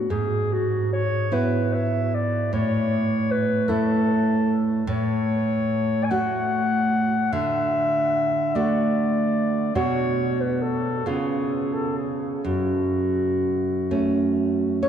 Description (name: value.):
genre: romantic duo for clarinet and classical guitar.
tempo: 40-53 BPM (dotted quarters).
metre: 6/8.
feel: rubato.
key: A major, F# minor from 4.9 s.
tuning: A4 = 443 Hz.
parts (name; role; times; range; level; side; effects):
mellow clarinet; melody; 0.0-14.8 s; F#4 to G#5; -25 LUFS; left 2 dB; none.
nylon-string guitar; accompaniment; 0.0-14.9 s; F#2 to C#5; -22 LUFS; right 2 dB; none.
room: wet cathedral reverb, RT60 5.3 s.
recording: recorded in a church or concert hall.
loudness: -20 LUFS.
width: side -9 dB against mid.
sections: 0.0-14.9 A section.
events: none.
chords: 0.1 E/G#; 2.5 A; 4.9 F#m/A; 7.3 D; 9.7 Amaj13/B; 11.1 C#7; 12.4 F#m.